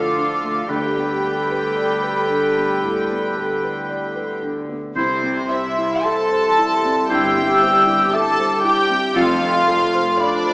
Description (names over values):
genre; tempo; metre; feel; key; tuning
cinematic; 57 BPM; 4/4; rubato; unclear; A4 = 440 Hz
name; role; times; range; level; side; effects
warm symphonic violin section; melody; 0.0-10.5 s; C5 to A5; -25 LUFS; left 1 dB; none
clear oboe; second line; 0.0-9.6 s; A4 to C5; -26 LUFS; equal; none
mellow hollow large flute ensemble; second line; 0.0-10.5 s; B5 to E6; -21 LUFS; equal; none
warm clarinet; second line; 0.0-9.6 s; E4 to A4; -26 LUFS; equal; none
warm symphonic violin section; second line; 0.0-10.5 s; C5 to A5; -27 LUFS; equal; none
felt-muted upright piano; accompaniment; 0.0-10.5 s; C2 to F5; -27 LUFS; equal; none
warm studio viola section; accompaniment; 0.0-10.5 s; C4 to A4; -23 LUFS; equal; none
mellow French horn section; sustained chords; 0.0-10.5 s; F3 to A4; -27 LUFS; equal; none
concert harp; arpeggios; 0.0-10.5 s; C3 to A5; -33 LUFS; left 1 dB; none
rich studio double bass section; bass; 0.0-10.0 s; F1 to D2; -33 LUFS; equal; none
warm symphonic cello section; bass; 0.0-10.0 s; F2 to D3; -29 LUFS; equal; none
timpani; percussion; 0.7-2.3 s; D3; -37 LUFS; equal; none
room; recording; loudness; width
wet scoring stage reverb, RT60 1.7 s; small speaker sound; -16 LUFS; side -26 dB against mid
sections
0.0-10.5 A section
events
none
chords
0.0 Dm; 0.7 Gadd9/D; 5.0 C; 9.2 F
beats
| 0.70 1.77 2.84 3.90 | 4.96 6.06 7.10 8.13 | 9.16 10.20